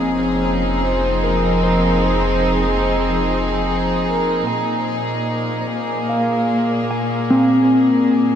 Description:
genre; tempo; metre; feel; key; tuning
ambient; 74 BPM; 3/4; straight; unclear; A4 = 441 Hz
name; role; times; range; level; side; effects
rich chamber string section; sustained chords; 0.0-8.4 s; Bb2 to Ab4; -18 LUFS; equal; none
mellow electric guitar; arpeggios; 0.0-8.4 s; C4 to Ab5; -20 LUFS; left 1 dB; spring reverb, diffuse ambient delay
round analog bass; bass; 0.0-4.4 s; F1; -24 LUFS; equal; none
organ-like drone; drone; 0.0-4.6 s; Bb3 to F4; -35 LUFS; equal; none
breathy flute-like synth lead; melody; 0.8-8.4 s; Ab4 to C5; -26 LUFS; equal; chorus, diffuse ambient delay
room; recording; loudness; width
wet huge ambient reverb, RT60 6.9 s; dark, warm production; -16 LUFS; side -8 dB against mid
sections
0.0-4.5 A section; 4.5-8.4 B section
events
none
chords
0.0 Fm7; 4.5 Bb7(no3)

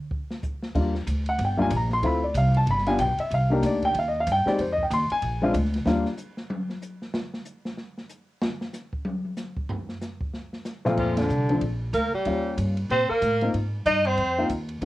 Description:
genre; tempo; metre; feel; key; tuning
jazz, small-group swing and bop; 188 BPM; 4/4; swing 61% on 8ths; Eb major, Bb major from 11.0 s; A4 = 435 Hz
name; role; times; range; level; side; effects
open jazz drum kit; drums; 0.1-14.8 s; crash cymbal, hi-hat, kick drum, ride cymbal, snare drum, toms; -34 LUFS; equal; cassette tape
dark grand piano; accompaniment; 0.7-6.1, 10.8-14.8 s; Bb2 to C6; -24 LUFS; left 1 dB; cassette tape
upright bass; bass; 0.7-6.0, 11.0-14.8 s; G1 to Bb2; -26 LUFS; equal; none
warm alto saxophone; melody; 11.0-14.5 s; D4 to Eb5; -26 LUFS; left 1 dB; cassette tape
warm tenor saxophone; second line; 11.0-14.5 s; D3 to Eb4; -26 LUFS; right 2 dB; cassette tape
room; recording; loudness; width
light reverb; home recording on cassette; -23 LUFS; side -16 dB against mid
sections
0.8-11.0 A section; 11.0-14.8 B section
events
drum solo 5.9-11.0; band accent 11.1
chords
0.0 N.C.; 0.8 Ebmaj7; 2.0 Dm7; 2.7 G7; 3.3 Cm7; 4.6 Eb69; 5.2 Bb7; 5.9 Ebmaj9; 7.1 N.C.; 10.3 F; 11.0 Bbmaj9; 12.3 Eb7; 13.5 Ab6

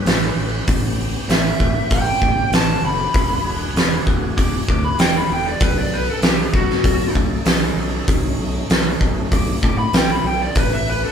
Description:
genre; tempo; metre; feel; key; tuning
blues rock power trio and southern rock; 97 BPM; 4/4; straight; unclear; A4 = 441 Hz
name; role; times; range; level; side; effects
overdriven tonewheel organ; sustained chords; 0.0-11.1 s; A3 to B4; -30 LUFS; right 2 dB; slow rotary speaker, chorus vibrato
fingered electric bass; bass; 0.1-11.0 s; E1 to A2; -24 LUFS; equal; none
oversized low-tuned drum kit; drums; 0.1-10.7 s; hi-hat, kick drum, snare drum; -18 LUFS; equal; none
lead guitar through a small cranked amp; melody; 1.3-11.1 s; F#4 to D6; -22 LUFS; equal; overdrive
room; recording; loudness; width
moderate large studio reverb, RT60 1.2 s; band playing live in one room; -16 LUFS; side -7 dB against mid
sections
0.0-11.1 A section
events
lead electric guitar solo 0.0-11.1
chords
0.0 A7; 3.1 E7; 5.6 B7; 10.6 A7

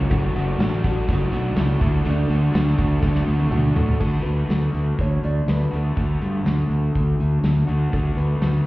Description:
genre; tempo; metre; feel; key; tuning
indie rock; 122 BPM; 4/4; straight; D major; A4 = 440 Hz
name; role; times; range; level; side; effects
tonewheel organ; sustained chords; 0.0-4.0 s; F#4 to D6; -42 LUFS; right 1 dB; none
crunchy overdriven guitar; riff; 0.0-4.0 s; A3 to F#4; -31 LUFS; right 6 dB; ensemble chorus, tape echo
overdriven electric guitar; riff; 0.0-8.7 s; D3 to F#4; -28 LUFS; left 3 dB; none
fuzz fingered electric bass; bass; 0.0-8.6 s; F#1 to A2; -20 LUFS; equal; overdrive
mellow electric guitar; melody; 0.1-8.7 s; D4 to D5; -30 LUFS; equal; spring reverb
metallic FM bell; second line; 0.1-3.7 s; D5 to F#5; -44 LUFS; right 4 dB; none
loose indie drum kit; drums; 0.1-8.5 s; crash cymbal, hi-hat, kick drum, snare drum, tambourine, toms; -24 LUFS; equal; none
room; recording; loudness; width
little or no reverb; heard muffled through a wall, stone room reverb, EQ; -18 LUFS; side -18 dB against mid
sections
0.0-4.0 A section; 4.0-8.7 B section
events
drum fill 3.0-4.0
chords
0.1 D/F#; 1.8 Dmaj7; 4.0 D

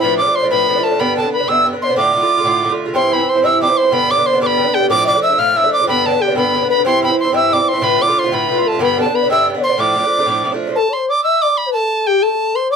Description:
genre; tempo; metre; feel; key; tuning
celtic folk, Celtic jig; 123 BPM (dotted quarters); 6/8; straight; D dorian; A4 = 439 Hz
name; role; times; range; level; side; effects
bright tin whistle; melody; 0.0-12.8 s; G5 to F6; -16 LUFS; right 2 dB; none
gliding portamento lead; second line; 0.0-12.8 s; G4 to F5; -18 LUFS; left 5 dB; chorus
Irish bouzouki; accompaniment; 0.0-10.8 s; G2 to F4; -18 LUFS; right 4 dB; none
room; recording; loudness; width
wet small room reverb, RT60 0.5 s; none; -12 LUFS; side -6 dB against mid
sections
0.0-3.0 A section; 3.0-10.8 A section; 10.8-12.8 B section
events
none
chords
0.0 Dm; 1.0 G; 2.0 Dm; 3.0 C; 3.9 G; 4.9 Dm; 5.9 G; 6.9 C; 7.8 Dm; 8.8 G; 9.8 Dm; 10.8 N.C.

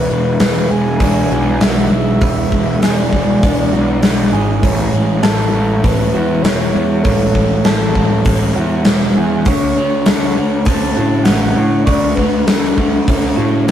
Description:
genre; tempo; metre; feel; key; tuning
rock, shoegaze and dream pop; 99 BPM; 4/4; straight; A major; A4 = 440 Hz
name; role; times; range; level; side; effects
breathy flute-like synth lead; melody; 0.0-13.7 s; A4 to A5; -22 LUFS; left 2 dB; chorus
direct-recorded clean electric guitar; arpeggios; 0.0-13.7 s; F#4 to C#6; -24 LUFS; right 6 dB; none
overdriven semi-hollow guitar; riff; 0.0-13.7 s; E2 to D4; -18 LUFS; left 3 dB; none
overdriven semi-hollow guitar; riff; 0.0-13.7 s; E2 to D4; -21 LUFS; right 5 dB; none
fuzz picked electric bass; bass; 0.0-13.7 s; E1 to A2; -18 LUFS; equal; overdrive
gated 80s drum kit; drums; 0.4-13.7 s; hi-hat, kick drum, snare drum; -16 LUFS; equal; none
room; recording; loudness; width
moderate studio ambience, RT60 0.5 s; rough rehearsal-room recording, tube saturation; -12 LUFS; side -10 dB against mid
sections
0.0-13.7 A section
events
none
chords
0.0 E7; 4.6 Amaj7; 9.5 Dmaj7

